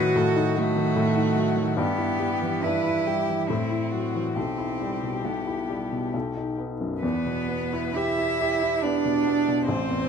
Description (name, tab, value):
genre	classical, slow romantic movement for piano trio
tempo	68 BPM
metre	3/4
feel	uneven beats, rubato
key	E minor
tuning	A4 = 442 Hz
part	rich violin	melody	0.0-10.1 s	E4 to E5	-32 LUFS	left 8 dB	none
part	clear cello	second line	0.0-10.1 s	A3 to F#4	-26 LUFS	right 7 dB	none
part	clear baby grand piano	accompaniment	0.0-10.1 s	A1 to G4	-26 LUFS	left 2 dB	none
room	wet large studio reverb, RT60 1.3 s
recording	none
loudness	-23 LUFS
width	side -7 dB against mid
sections	0.0-7.0 A section; 7.0-10.1 B section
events	none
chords	0.0 B7/A (rootless); 1.8 Em/G; 3.5 F#m7b5/A; 4.4 Em/B; 6.1 B; 7.0 Em